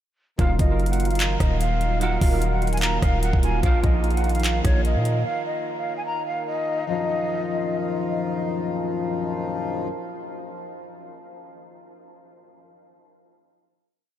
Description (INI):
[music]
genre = hip hop, trap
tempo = 148 BPM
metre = 4/4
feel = half-time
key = Eb minor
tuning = A4 = 440 Hz
[part]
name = breathy jazz flute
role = melody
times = 0.4-8.1 s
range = Db5 to Bb5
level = -29 LUFS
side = left 1 dB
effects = low-pass filter, ping-pong delay
[part]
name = bell-like tine electric piano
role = accompaniment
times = 0.4-5.3 s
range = Eb3 to Bb4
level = -30 LUFS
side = right 5 dB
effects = ensemble chorus, low-pass filter
[part]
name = hand-pumped harmonium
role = sustained chords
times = 0.4-9.9 s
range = Eb3 to F4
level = -31 LUFS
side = equal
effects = none
[part]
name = warm brass ensemble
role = stabs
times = 0.4-0.7, 3.6-3.9, 6.9-9.9 s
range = Bb1 to F3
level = -32 LUFS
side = left 6 dB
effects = ping-pong delay
[part]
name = hard-hitting 808-style bass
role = bass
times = 0.4-5.2 s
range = Eb1 to Bb2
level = -23 LUFS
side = equal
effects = none
[part]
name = trap drum kit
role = drums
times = 0.4-5.2 s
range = handclaps, hi-hat, kick drum, rim click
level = -24 LUFS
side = equal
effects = none
[sound]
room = moderate huge ambient reverb, RT60 8.7 s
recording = dreamy mix soaked in reverb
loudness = -21 LUFS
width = side -11 dB against mid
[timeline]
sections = 0.4-6.9 hook; 6.9-10.1 final chord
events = none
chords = 0.4 Ebmadd9; 3.6 Bbsus4; 6.9 Ebmadd9